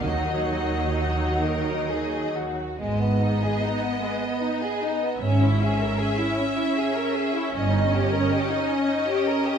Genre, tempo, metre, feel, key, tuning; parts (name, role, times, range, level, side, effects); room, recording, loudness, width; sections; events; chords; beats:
classical, slow romantic movement for string orchestra; 62-79 BPM; 3/4; rubato; G# minor; A4 = 440 Hz
clear symphonic violin section; melody; 0.0-9.6 s; Eb5 to E5; -30 LUFS; left 2 dB
rich symphonic violin section; second line; 0.0-9.6 s; G#3 to Bb4; -27 LUFS; left 2 dB
rich symphonic viola section; accompaniment; 0.0-9.6 s; Gb3 to Eb4; -28 LUFS; right 3 dB
bright symphonic double bass section; bass; 0.0-8.2 s; G1 to Eb2; -28 LUFS; right 2 dB
rich symphonic cello section; bass; 0.0-8.2 s; G2 to Eb3; -29 LUFS; right 1 dB
wet recital hall reverb, RT60 1.5 s; minimal, uncompressed stereo recording; -22 LUFS; side -7 dB against mid
0.0-2.8 A section; 2.8-9.6 B section
0.0 Ebm; 2.8 G#m; 5.2 A#m7b5/G# (rootless); 7.6 D#7/G
| 0.04 0.98 1.92 | 2.81 3.63 4.42 | 5.20 5.99 6.77 | 7.55 8.32 9.09